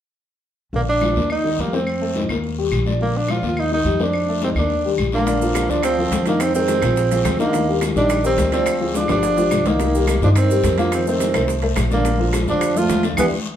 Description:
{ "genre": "Afro-Cuban jazz", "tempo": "212 BPM", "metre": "4/4", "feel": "straight", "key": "Bb major", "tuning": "A4 = 442 Hz", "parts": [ { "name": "warm baby grand piano", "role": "accompaniment", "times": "0.7-13.3 s", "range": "D3 to F5", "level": "-23 LUFS", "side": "left 3 dB", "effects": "none" }, { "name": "upright bass", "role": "bass", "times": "0.7-13.3 s", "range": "G1 to G2", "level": "-22 LUFS", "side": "equal", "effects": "none" }, { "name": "congas", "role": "percussion", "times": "0.7-13.2 s", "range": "none", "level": "-29 LUFS", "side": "left 4 dB", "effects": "none" }, { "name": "guiro", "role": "percussion", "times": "0.7-13.2 s", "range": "none", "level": "-34 LUFS", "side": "left 5 dB", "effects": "none" }, { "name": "breathy tenor saxophone", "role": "melody", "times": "0.8-13.3 s", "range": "Bb3 to F4", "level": "-21 LUFS", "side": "right 2 dB", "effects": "none" }, { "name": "claves", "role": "percussion", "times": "1.0-13.2 s", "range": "none", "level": "-32 LUFS", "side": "left 1 dB", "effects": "none" }, { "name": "breathy trombone", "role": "second line", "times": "5.1-13.2 s", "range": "D3 to A3", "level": "-26 LUFS", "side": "right 2 dB", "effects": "none" }, { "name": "bongos", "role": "percussion", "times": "5.3-13.2 s", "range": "none", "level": "-31 LUFS", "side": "left 4 dB", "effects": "none" }, { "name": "maracas", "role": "percussion", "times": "5.3-13.2 s", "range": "none", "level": "-35 LUFS", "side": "right 6 dB", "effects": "none" }, { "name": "timbales", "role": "percussion", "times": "5.3-13.2 s", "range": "none", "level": "-31 LUFS", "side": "right 6 dB", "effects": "none" } ], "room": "wet large studio reverb, RT60 0.8 s", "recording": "band playing live in one room", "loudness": "-16 LUFS", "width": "side -10 dB against mid", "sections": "0.7-5.3 A section; 5.3-13.6 B section", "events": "drum fill 8.9-9.8, 13.2-13.6; band accent 13.2-13.6", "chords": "0.7 Bb; 1.3 Eb; 1.9 F7; 2.4 Ebmaj7; 3.0 Bb; 3.6 Eb; 4.1 F7; 4.7 Ebmaj7; 5.3 Bbmaj7; 6.4 Fm7; 7.0 Bbsus2; 7.5 Ebmaj7; 8.7 Dm7b5; 9.2 G5; 9.8 Cm7; 10.9 F6; 12.1 Bbmaj7" }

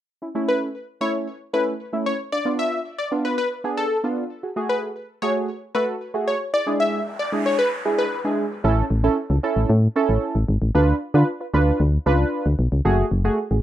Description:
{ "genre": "pop", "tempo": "114 BPM", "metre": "4/4", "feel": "straight", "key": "A major", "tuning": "A4 = 440 Hz", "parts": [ { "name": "warm analog keys", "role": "accompaniment", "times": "0.2-13.6 s", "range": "G#3 to B4", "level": "-23 LUFS", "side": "right 2 dB", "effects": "chorus" }, { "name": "plucky unison lead", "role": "melody", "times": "0.5-8.2 s", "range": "A4 to E5", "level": "-23 LUFS", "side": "left 2 dB", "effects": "none" }, { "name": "noise sweep", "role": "sound effects", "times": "7.0-8.6 s", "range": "none", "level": "-35 LUFS", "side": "right 1 dB", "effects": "none" }, { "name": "solid FM bass", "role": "bass", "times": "8.6-13.6 s", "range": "F#1 to D3", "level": "-18 LUFS", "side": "equal", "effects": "none" } ], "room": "moderate studio reverb, RT60 0.6 s", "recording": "rough home demo mix", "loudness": "-20 LUFS", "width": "side -12 dB against mid", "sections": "0.2-8.6 A section; 8.6-13.6 B section", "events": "noise sweep 7.0-8.6", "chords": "0.2 A; 2.3 Dm6; 4.4 F#madd9; 6.5 E7/G#; 8.6 A; 10.7 Dm6; 12.9 F#madd9" }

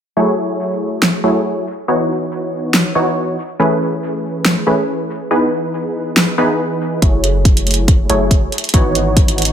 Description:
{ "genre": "future bass", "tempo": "140 BPM", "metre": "4/4", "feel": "swing 55% on 16ths, half-time", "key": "unclear", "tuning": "A4 = 440 Hz", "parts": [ { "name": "supersaw stab", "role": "riff", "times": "0.2-9.5 s", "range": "E3 to C#5", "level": "-16 LUFS", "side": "equal", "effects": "sidechain pumping, low-pass filter, dub echo" }, { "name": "pop drum kit", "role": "drums", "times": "1.0-9.5 s", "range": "hi-hat, snare drum", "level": "-15 LUFS", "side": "equal", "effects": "none" }, { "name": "long sustained 808-style bass", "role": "bass", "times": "7.0-9.5 s", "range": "F#1 to G#1", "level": "-19 LUFS", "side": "equal", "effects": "sidechain pumping" }, { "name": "electronic kick drum", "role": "drums", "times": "7.0-9.3 s", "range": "none", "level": "-12 LUFS", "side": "equal", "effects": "none" } ], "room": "light reverb, digital ambience", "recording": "none", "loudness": "-13 LUFS", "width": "side -9 dB against mid", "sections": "0.2-7.0 A section; 7.0-9.5 B section", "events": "build-up 7.0-9.5; filter sweep on supersaw synth 7.0-9.5; filter sweep 7.0-9.5", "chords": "0.2 F#m9; 1.7 C#m11; 3.4 Amaj9; 5.3 Emaj7; 7.0 F#m9; 8.5 C#m11/G#" }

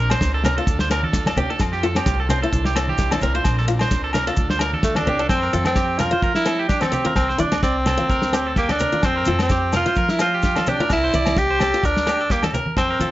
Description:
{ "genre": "highlife guitar band", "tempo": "129 BPM", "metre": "4/4", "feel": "swing 55% on 16ths", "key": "F major", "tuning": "A4 = 441 Hz", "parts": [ { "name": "combo organ", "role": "sustained chords", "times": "0.0-5.3 s", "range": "C4 to C5", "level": "-32 LUFS", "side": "equal", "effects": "none" }, { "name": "electric guitar at the edge of break-up", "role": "arpeggios", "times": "0.0-13.1 s", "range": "G4 to D5", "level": "-25 LUFS", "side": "right 3 dB", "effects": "slapback echo" }, { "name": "upright bass", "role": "bass", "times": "0.0-13.1 s", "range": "Bb1 to F3", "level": "-25 LUFS", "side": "equal", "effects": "none" }, { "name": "picked old ladder-braced acoustic guitar", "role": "accompaniment", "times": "0.1-13.1 s", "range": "C4 to F4", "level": "-26 LUFS", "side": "left 3 dB", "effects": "none" }, { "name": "damped 70s drum kit", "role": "drums", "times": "0.1-12.9 s", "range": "kick drum, snare drum", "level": "-23 LUFS", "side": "equal", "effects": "none" }, { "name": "agogo bells", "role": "percussion", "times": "0.1-12.9 s", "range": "none", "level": "-31 LUFS", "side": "left 4 dB", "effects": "none" }, { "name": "maracas", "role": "percussion", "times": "0.2-13.1 s", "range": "none", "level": "-38 LUFS", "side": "left 3 dB", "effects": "none" }, { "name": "congas", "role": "percussion", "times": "0.4-13.1 s", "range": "none", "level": "-28 LUFS", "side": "right 1 dB", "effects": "none" }, { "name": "raspy tenor saxophone", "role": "melody", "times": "4.8-13.1 s", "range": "A3 to G4", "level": "-21 LUFS", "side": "equal", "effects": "none" } ], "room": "moderate studio reverb, RT60 0.7 s", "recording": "nothing above 7.8 kHz", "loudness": "-17 LUFS", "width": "side -16 dB against mid", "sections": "0.0-5.3 A section; 5.3-13.1 B section", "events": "none", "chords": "0.0 Bbadd9; 0.7 Dm; 1.6 F; 2.5 Cadd9; 3.5 Bbadd9; 4.4 Dm; 5.3 Fsus2; 7.2 N.C.; 8.1 Bb/D; 9.0 Fsus2; 10.9 C; 11.8 Bb/D" }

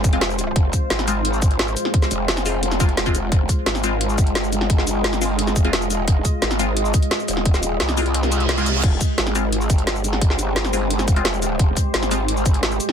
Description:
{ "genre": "dark technical drum and bass", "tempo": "174 BPM", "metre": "4/4", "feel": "straight", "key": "F minor", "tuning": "A4 = 441 Hz", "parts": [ { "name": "deep dark ambient pad", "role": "sustained chords", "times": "0.0-12.9 s", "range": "Ab3 to Eb5", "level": "-25 LUFS", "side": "equal", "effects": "chorus, built-in reverb, sidechain pumping" }, { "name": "filtered dub chord stab", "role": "stabs", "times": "0.0-12.2 s", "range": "Ab3 to F4", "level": "-27 LUFS", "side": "left 4 dB", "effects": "phaser, ping-pong delay" }, { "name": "growl bass", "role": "bass", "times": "0.0-12.8 s", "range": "Eb1 to C2", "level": "-23 LUFS", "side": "equal", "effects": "chorus, overdrive, sidechain pumping" }, { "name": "drum and bass drum kit", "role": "drums", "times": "0.0-12.9 s", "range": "cabasa, crash cymbal, hi-hat, snare drum", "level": "-23 LUFS", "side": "equal", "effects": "none" }, { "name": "electronic kick drum", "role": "drums", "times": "0.0-12.5 s", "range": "none", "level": "-18 LUFS", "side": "equal", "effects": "none" }, { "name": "reverse cymbal", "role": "sound effects", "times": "8.3-8.8 s", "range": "none", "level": "-24 LUFS", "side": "right 5 dB", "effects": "none" } ], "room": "little or no reverb", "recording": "dense, heavily limited modern master", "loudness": "-17 LUFS", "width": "side -8 dB against mid", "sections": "0.0-12.9 A section", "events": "kick drops out 8.1-8.8; reverse cymbal 8.3-8.8", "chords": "0.0 Fm" }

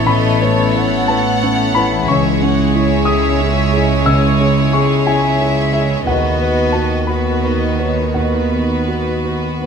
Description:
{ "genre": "cinematic, emotional film score for orchestra", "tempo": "59 BPM (dotted quarters)", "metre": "6/8", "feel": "uneven beats, rubato", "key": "unclear", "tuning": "A4 = 440 Hz", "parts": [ { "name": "warm studio violin section", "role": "melody", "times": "0.0-9.7 s", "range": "B4 to F#5", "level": "-24 LUFS", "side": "left 1 dB", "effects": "none" }, { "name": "clear studio violin section", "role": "second line", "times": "0.0-9.7 s", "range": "F#4 to C#5", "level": "-21 LUFS", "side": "equal", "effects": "none" }, { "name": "dark concert grand piano", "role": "accompaniment", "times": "0.0-9.7 s", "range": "A1 to E6", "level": "-18 LUFS", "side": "left 1 dB", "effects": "none" }, { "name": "rich studio viola section", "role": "accompaniment", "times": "0.0-9.7 s", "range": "G#3 to F#4", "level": "-21 LUFS", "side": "right 2 dB", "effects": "none" }, { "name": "concert harp", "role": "arpeggios", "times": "0.0-9.7 s", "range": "A2 to C#5", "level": "-22 LUFS", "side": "left 11 dB", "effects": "none" }, { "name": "dark studio cello section", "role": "bass", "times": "0.0-9.7 s", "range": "A2 to D#3", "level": "-22 LUFS", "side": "right 5 dB", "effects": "none" }, { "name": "rich studio double bass section", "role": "bass", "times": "0.0-9.7 s", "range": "A1 to D#2", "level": "-20 LUFS", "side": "right 4 dB", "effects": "none" } ], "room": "moderate scoring stage reverb, RT60 1.7 s", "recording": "none", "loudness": "-13 LUFS", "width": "side -6 dB against mid", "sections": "0.0-9.7 A section", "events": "none", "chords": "0.0 Aadd9; 2.1 C#m; 6.1 B/D#" }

